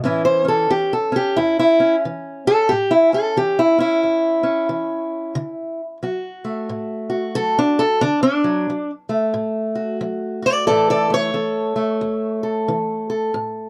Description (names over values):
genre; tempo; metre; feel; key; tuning
acoustic country blues, solo or duo; 90 BPM; 4/4; swing 61% on 8ths; A major; A4 = 440 Hz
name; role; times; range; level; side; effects
fingerpicked acoustic archtop guitar; solo; 0.0-13.7 s; E2 to D5; -20 LUFS; equal; none
room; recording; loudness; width
light reverb; dry, close 1970s-style studio recording; -19 LUFS; mono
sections
0.0-13.7 A section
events
steel-string acoustic guitar solo 0.0-13.7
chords
0.0 A; 5.4 D; 10.7 A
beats
| 0.04 0.70 1.37 2.03 | 2.70 3.36 4.03 4.69 | 5.36 6.02 6.69 7.36 | 8.02 8.69 9.35 10.02 | 10.68 11.35 12.02 12.68 | 13.35